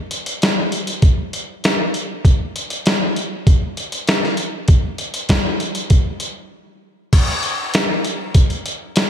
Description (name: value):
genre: rock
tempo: 98 BPM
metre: 4/4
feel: straight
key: none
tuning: none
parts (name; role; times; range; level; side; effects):
- trip hop sampler-style drum kit; drums; 0.1-9.1 s; crash cymbal, hi-hat, kick drum, snare drum; -16 LUFS; equal; none
room: light reverb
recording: none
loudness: -16 LUFS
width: side -9 dB against mid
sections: 0.0-7.1 A section; 7.1-9.1 B section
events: break 6.5-7.1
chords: none